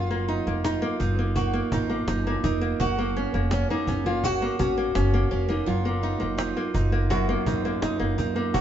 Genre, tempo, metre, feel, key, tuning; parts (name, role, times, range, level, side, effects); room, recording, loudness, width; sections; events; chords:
acoustic pop; 84 BPM; 4/4; straight; A4 = 444 Hz
fingerpicked steel-string acoustic guitar; melody; 0.0-7.1 s; C#4 to F#4; -30 LUFS; left 3 dB
nylon-string guitar; accompaniment; 0.0-8.6 s; F#2 to F#4; -27 LUFS; equal
picked steel-string acoustic guitar; arpeggios; 0.0-8.6 s; F#3 to F#4; -32 LUFS; right 7 dB
upright bass; bass; 0.0-8.6 s; E#1 to F#2; -27 LUFS; equal
cajon; drums; 0.1-8.6 s; -33 LUFS; right 1 dB
moderate stone room reverb, RT60 1.1 s; band playing live in one room, nothing above 7.7 kHz; -23 LUFS; side -10 dB against mid
0.0-8.6 A section
0.0 D#madd9; 2.8 F#; 5.7 D#madd9